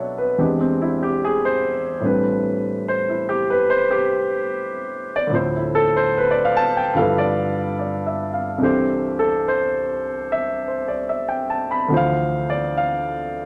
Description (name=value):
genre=jazz ballad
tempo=73 BPM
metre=4/4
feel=swing 67% on 8ths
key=C major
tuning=A4 = 440 Hz
part: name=warm grand piano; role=solo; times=0.0-13.5 s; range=C2 to B5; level=-21 LUFS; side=equal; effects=none
room=moderate studio reverb, RT60 0.9 s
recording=none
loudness=-21 LUFS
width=mono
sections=0.0-13.5 A section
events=none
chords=0.4 E7alt; 2.0 Am11; 5.3 Dm9; 7.0 G13; 8.6 C69; 11.9 Dm7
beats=0.37 1.20 | 2.02 2.85 3.67 4.50 | 5.32 6.14 6.96 7.79 | 8.61 9.43 10.25 11.08 | 11.90 12.72